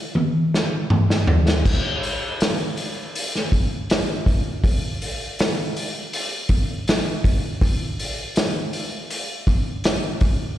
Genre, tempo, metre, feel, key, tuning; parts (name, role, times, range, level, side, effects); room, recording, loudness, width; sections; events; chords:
rock; 80 BPM; 4/4; straight
vintage drum kit; drums; 0.2-10.4 s; crash cymbal, hi-hat, kick drum, snare drum, toms; -20 LUFS; equal
light reverb; live gig heard through the venue's PA, recital hall reverb; -20 LUFS; side -12 dB against mid
0.0-1.6 A section; 1.6-10.6 B section
drum fill 0.2-1.6